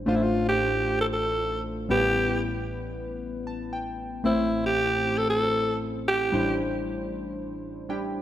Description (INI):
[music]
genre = pop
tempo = 115 BPM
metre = 4/4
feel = swing 55% on 16ths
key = A minor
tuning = A4 = 443 Hz
[part]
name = glassy digital keys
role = accompaniment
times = 0.0-8.2 s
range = A1 to A5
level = -27 LUFS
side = left 1 dB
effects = chorus
[part]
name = raspy alto saxophone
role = melody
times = 0.1-6.6 s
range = E4 to A4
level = -25 LUFS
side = right 1 dB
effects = digital delay
[sound]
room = moderate scoring stage reverb, RT60 1.5 s, studio ambience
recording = none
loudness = -24 LUFS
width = side -12 dB against mid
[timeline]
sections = 0.0-8.2 A section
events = synth keys fill 3.2-4.2, 7.6-8.2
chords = 0.1 Dm7/A; 1.9 Em/A; 4.2 Am; 6.3 Cadd9/A